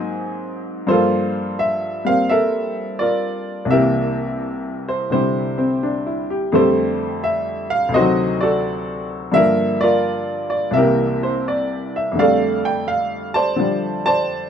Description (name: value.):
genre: solo jazz.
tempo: 85 BPM.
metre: 4/4.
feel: swing 66% on 8ths.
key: F major.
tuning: A4 = 440 Hz.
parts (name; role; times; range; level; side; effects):
clear upright piano; solo; 0.0-14.5 s; C2 to A5; -17 LUFS; equal; none.
room: moderate small room reverb, RT60 0.5 s.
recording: none.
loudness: -17 LUFS.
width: side -8 dB against mid.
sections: 0.0-12.2 A section; 12.2-14.5 B section.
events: none.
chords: 0.0 Ab9; 0.9 Gm9; 3.7 C7; 6.5 F69; 7.9 D7b9; 9.3 Gm7; 10.8 C7; 12.2 F69.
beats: 0.18 | 0.88 1.59 2.29 3.00 | 3.70 4.41 5.11 5.82 | 6.52 7.23 7.93 8.64 | 9.34 10.05 10.75 11.46 | 12.16 12.87 13.57 14.28.